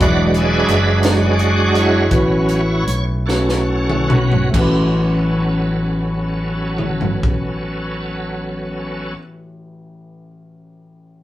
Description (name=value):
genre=slow gospel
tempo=44-59 BPM (dotted quarters)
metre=6/8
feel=straight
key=A major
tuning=A4 = 440 Hz
part: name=dark grand piano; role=accompaniment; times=0.0-11.2 s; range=A1 to D5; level=-24 LUFS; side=left 1 dB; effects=none
part: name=bright tonewheel organ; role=sustained chords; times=0.0-9.1 s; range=F#3 to F#5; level=-19 LUFS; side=right 1 dB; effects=slow rotary speaker, chorus vibrato
part: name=fingered electric bass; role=bass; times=0.0-9.1 s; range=E1 to B1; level=-20 LUFS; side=equal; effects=none
part: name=crisp fusion drum kit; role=drums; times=0.0-7.4 s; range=crash cymbal, hi-hat, kick drum, snare drum, toms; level=-19 LUFS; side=equal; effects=none
room=wet studio reverb, RT60 0.6 s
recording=rough rehearsal-room recording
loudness=-15 LUFS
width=side -14 dB against mid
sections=0.0-4.5 A section; 4.5-9.9 B section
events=slowing down 0.0-4.5; tonewheel organ solo 0.0-4.5; drum fill 3.3-4.5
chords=0.0 E9; 2.1 A69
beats=| 0.01 1.04 | 2.11 3.27 | 4.54 5.89 | 7.24 8.58